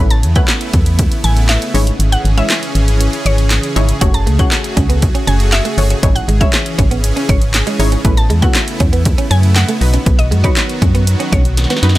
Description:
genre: dance-pop.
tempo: 119 BPM.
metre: 4/4.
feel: straight.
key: C# minor.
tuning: A4 = 441 Hz.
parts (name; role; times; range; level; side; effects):
punchy chord stab; accompaniment; 0.0-12.0 s; G#3 to E5; -22 LUFS; left 1 dB; chorus, sidechain pumping.
supersaw pad; sustained chords; 0.0-12.0 s; C#3 to G#4; -22 LUFS; equal; sidechain pumping.
organ-like FM bass; bass; 0.0-12.0 s; F#1 to F#2; -13 LUFS; equal; sidechain pumping.
mallet-like synth pluck; melody; 0.1-11.4 s; C#5 to A5; -23 LUFS; equal; chorus, digital delay.
punchy analog drum machine; drums; 0.1-12.0 s; handclaps, hi-hat, kick drum, snare drum; -15 LUFS; equal; none.
direct-recorded clean electric guitar; riff; 4.0-12.0 s; G#3 to F#4; -21 LUFS; right 4 dB; ensemble chorus.
room: little or no reverb.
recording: none.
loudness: -11 LUFS.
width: side -16 dB against mid.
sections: 0.0-12.0 A section.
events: kick muted 2.0-4.0; drum fill 11.6-12.0.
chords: 0.0 Aadd9; 1.7 C#madd9/G#; 4.0 F#madd9; 6.0 C#madd9/G#; 8.0 Aadd9; 9.8 B.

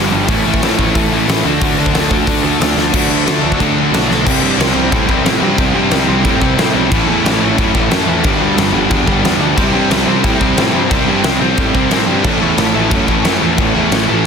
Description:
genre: punk rock.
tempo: 181 BPM.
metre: 4/4.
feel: straight.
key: unclear.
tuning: A4 = 439 Hz.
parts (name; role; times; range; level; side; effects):
distorted electric guitar; riff; 0.0-14.3 s; G2 to D4; -18 LUFS; left 16 dB; overdrive.
high-gain distorted guitar; riff; 0.0-14.3 s; G2 to F#4; -19 LUFS; left 1 dB; distortion.
sludgy distorted guitar; riff; 0.0-14.3 s; G2 to D4; -18 LUFS; right 11 dB; overdrive.
fuzz picked electric bass; bass; 0.0-14.2 s; G1 to A2; -19 LUFS; equal; overdrive.
big rock drum kit; drums; 0.3-14.0 s; crash cymbal, hi-hat, kick drum, snare drum; -16 LUFS; equal; none.
room: little or no reverb.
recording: dense, heavily limited modern master.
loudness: -11 LUFS.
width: side -6 dB against mid.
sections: 0.0-2.9 A section; 2.9-4.3 B section; 4.3-14.3 C section.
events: drum fill 2.8, 4.1.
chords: 0.3 A; 1.4 D; 4.3 C; 6.9 A; 8.2 G; 9.6 C; 12.2 A.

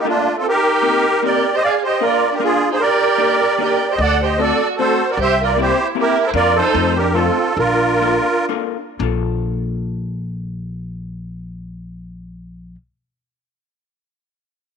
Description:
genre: musette waltz.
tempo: 113-154 BPM.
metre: 3/4.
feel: swing 54% on 8ths.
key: Bb major.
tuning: A4 = 440 Hz.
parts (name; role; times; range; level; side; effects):
musette accordion; melody; 0.0-8.5 s; D4 to F#5; -16 LUFS; right 1 dB; slapback echo.
dark violin; second line; 0.0-8.4 s; A3 to A4; -21 LUFS; right 8 dB; slapback echo.
vintage hollow-body jazz guitar; accompaniment; 0.0-12.8 s; F3 to Bb4; -24 LUFS; left 14 dB; none.
upright bass; bass; 4.0-12.7 s; Bb1 to F2; -23 LUFS; left 1 dB; none.
room: moderate echo chamber reverb, RT60 1.8 s, studio reverb.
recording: 1960s-style stereo with parts hard left and right.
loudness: -14 LUFS.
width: side -6 dB against mid.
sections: 0.0-9.0 A section; 9.0-12.2 B section.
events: slowing down 6.3-9.0.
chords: 0.5 Eb6; 1.6 Bb7; 2.8 Ebmaj7; 4.0 D7; 5.2 C7; 6.3 Bb/F; 6.7 F7; 7.6 Bbmaj7.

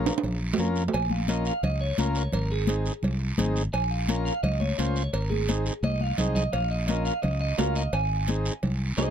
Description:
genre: latin, cumbia.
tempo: 171 BPM.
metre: 4/4.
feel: straight.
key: Bb minor.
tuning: A4 = 441 Hz.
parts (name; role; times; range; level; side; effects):
clean electric guitar; melody; 0.0-9.1 s; Ab4 to Ab5; -31 LUFS; right 3 dB; spring reverb.
overdriven combo organ; accompaniment; 0.0-9.1 s; C4 to C5; -30 LUFS; left 2 dB; none.
fingered electric bass; bass; 0.0-9.1 s; Ab1 to F2; -27 LUFS; equal; none.
guiro; percussion; 0.1-9.1 s; none; -38 LUFS; right 3 dB; none.
timbales and cowbell; percussion; 0.1-9.1 s; none; -31 LUFS; right 5 dB; none.
congas; percussion; 0.2-9.1 s; none; -31 LUFS; left 2 dB; none.
room: little or no reverb.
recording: close, detailed microphones.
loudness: -24 LUFS.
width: side -9 dB against mid.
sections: 0.9-9.1 A section.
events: drum fill 0.1-0.9, 5.8-6.5; clean electric guitar solo 0.9-9.1.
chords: 0.0 Bbm; 2.3 Ab; 3.7 Bbm; 5.1 Ab; 6.5 Bbm; 7.9 Ab.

